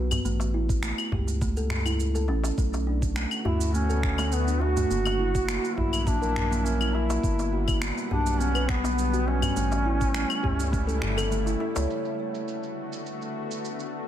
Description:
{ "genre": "organic downtempo", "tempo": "103 BPM", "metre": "4/4", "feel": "straight", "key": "B minor", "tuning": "A4 = 442 Hz", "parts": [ { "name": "warm sub bass", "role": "bass", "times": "0.0-11.9 s", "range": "F#1 to D2", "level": "-27 LUFS", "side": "equal", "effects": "none" }, { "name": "kalimba", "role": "arpeggios", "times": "0.1-11.9 s", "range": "A3 to C#5", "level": "-31 LUFS", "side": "right 1 dB", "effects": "digital delay" }, { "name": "electronic claves, shaker and finger snaps", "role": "drums", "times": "0.1-13.9 s", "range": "none", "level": "-34 LUFS", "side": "left 1 dB", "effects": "low-pass filter on perc, low-pass filter on snare, low-pass filter on room" }, { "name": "darbuka", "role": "percussion", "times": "0.1-11.9 s", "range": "none", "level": "-35 LUFS", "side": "left 2 dB", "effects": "none" }, { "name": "electronic kick drum", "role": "drums", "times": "0.7-10.9 s", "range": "none", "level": "-28 LUFS", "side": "equal", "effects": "none" }, { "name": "bowed-like drone", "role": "sustained chords", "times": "3.0-14.1 s", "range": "A#2 to F#5", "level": "-34 LUFS", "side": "left 1 dB", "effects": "built-in reverb, sidechain pumping" }, { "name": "mellow duduk", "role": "melody", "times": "3.4-11.3 s", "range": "B3 to F#4", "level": "-29 LUFS", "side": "equal", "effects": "digital delay" } ], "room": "light reverb, digital ambience", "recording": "none", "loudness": "-24 LUFS", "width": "side -10 dB against mid", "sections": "0.0-11.9 A section; 11.9-14.1 B section", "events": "none", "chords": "0.2 A; 2.6 Bm7; 4.9 F#7; 7.2 Gmaj7; 9.6 A7; 11.9 Bm7", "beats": "| 0.25 0.83 1.41 1.99 | 2.58 3.16 3.74 4.32 | 4.91 5.49 6.07 6.65 | 7.24 7.82 8.40 8.98 | 9.57 10.15 10.73 11.31 | 11.90 12.48 13.06 13.64" }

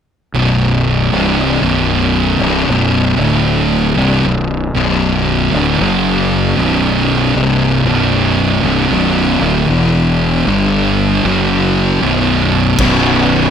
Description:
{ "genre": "stoner and doom metal", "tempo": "77 BPM", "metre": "4/4", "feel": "swing 64% on 8ths", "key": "B minor", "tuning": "A4 = 441 Hz", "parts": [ { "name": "thick fuzz guitar", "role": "riff", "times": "0.3-13.5 s", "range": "B1 to G3", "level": "-14 LUFS", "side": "right 8 dB", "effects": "distortion" }, { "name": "fuzz fingered electric bass", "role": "bass", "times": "0.3-13.5 s", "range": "B0 to G1", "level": "-18 LUFS", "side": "left 1 dB", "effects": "overdrive, tube saturation" }, { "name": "thick fuzz guitar", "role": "riff", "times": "0.4-13.5 s", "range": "B1 to G3", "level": "-15 LUFS", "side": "left 8 dB", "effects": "distortion" }, { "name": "tonewheel organ", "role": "sustained chords", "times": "12.8-13.5 s", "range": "B3 to C#5", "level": "-21 LUFS", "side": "left 2 dB", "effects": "slow rotary speaker, chorus vibrato" }, { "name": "distorted electric guitar", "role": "riff", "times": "12.8-13.5 s", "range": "B1 to B2", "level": "-16 LUFS", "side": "equal", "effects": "distortion" }, { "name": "big rock drum kit", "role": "drums", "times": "12.8-13.0 s", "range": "crash cymbal, kick drum", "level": "-19 LUFS", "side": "left 1 dB", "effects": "none" } ], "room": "light reverb", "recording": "none", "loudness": "-11 LUFS", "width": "side -8 dB against mid", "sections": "0.3-12.8 A section", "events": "none", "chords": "0.3 B5; 3.1 D5; 3.9 Bm; 5.8 F#5; 6.6 Bm; 9.7 E5; 10.5 G5; 11.2 F#5; 12.0 B5", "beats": "| 0.34 1.13 1.91 2.69 | 3.47 4.25 5.03 5.81 | 6.59 7.37 8.14 8.92 | 9.70 10.47 11.25 12.02 | 12.79" }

